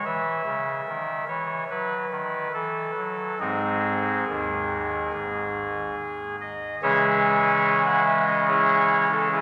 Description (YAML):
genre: classical, chorale-style piece for pipe organ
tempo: 72 BPM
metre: 4/4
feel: rubato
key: C# minor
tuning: A4 = 436 Hz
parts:
  - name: pipe organ, soft reed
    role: solo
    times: 0.0-9.4 s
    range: G#1 to F#5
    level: -24 LUFS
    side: equal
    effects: none
room: wet cathedral reverb, RT60 5.2 s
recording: none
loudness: -24 LUFS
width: mono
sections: 0.0-6.8 A section; 6.8-9.4 A section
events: none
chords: 0.1 C#m; 1.7 D#dim; 3.4 G#; 6.8 C#m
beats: | 0.07 0.89 1.71 2.55 | 3.41 4.28 5.13 5.98 | 6.82 7.64 8.47 9.30